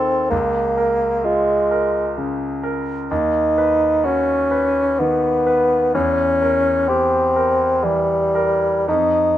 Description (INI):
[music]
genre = classical, romantic duo for bassoon and grand piano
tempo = 64 BPM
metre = 3/4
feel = rubato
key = unclear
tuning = A4 = 438 Hz
[part]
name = warm bassoon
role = melody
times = 0.0-9.4 s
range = G3 to Eb4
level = -16 LUFS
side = equal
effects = none
[part]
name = bright concert grand piano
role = accompaniment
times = 0.0-9.4 s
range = Db2 to B4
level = -23 LUFS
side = equal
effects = none
[sound]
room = light reverb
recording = minimal, uncompressed stereo recording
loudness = -16 LUFS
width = side -12 dB against mid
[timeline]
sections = 0.0-9.4 A section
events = none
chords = 0.3 Bbm/Db; 3.1 B/D#; 5.9 Edim7; 8.9 N.C.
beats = | 0.31 1.25 2.18 | 3.11 4.04 4.99 | 5.95 6.88 7.83 | 8.88